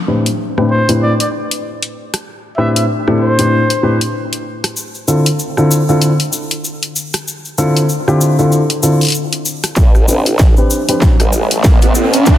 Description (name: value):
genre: glitch hop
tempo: 96 BPM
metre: 4/4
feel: swing 59% on 16ths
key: A minor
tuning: A4 = 445 Hz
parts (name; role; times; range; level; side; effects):
- dark grand piano; stabs; 0.1-11.1 s; A2 to B4; -14 LUFS; left 1 dB; sidechain pumping, low-pass filter, digital delay
- dubstep drum kit; drums; 0.3-12.4 s; hi-hat, rim click, snare drum; -19 LUFS; left 1 dB; none
- warm trumpet; melody; 0.7-3.8 s; C5 to E5; -19 LUFS; equal; digital delay
- cabasa; percussion; 4.8-12.4 s; none; -22 LUFS; left 2 dB; none
- formant-sweep wobble bass; bass; 9.8-12.4 s; A1; -16 LUFS; equal; chorus, high-pass filter
- electronic kick drum; drums; 9.8-12.4 s; none; -9 LUFS; equal; distortion
- riser; sound effects; 10.6-12.4 s; none; -17 LUFS; right 2 dB; none
room: moderate lush hall reverb, RT60 2.4 s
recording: dense, heavily limited modern master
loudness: -11 LUFS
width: side -12 dB against mid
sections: 0.0-9.8 A section; 9.8-12.4 B section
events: filter sweep on grand piano 0.0-9.8, 9.8-12.4; build-up 9.8-12.4; drum fill 9.8-12.4; riser 10.6-12.4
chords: 0.0 Am11; 4.8 Dm7; 9.8 Am11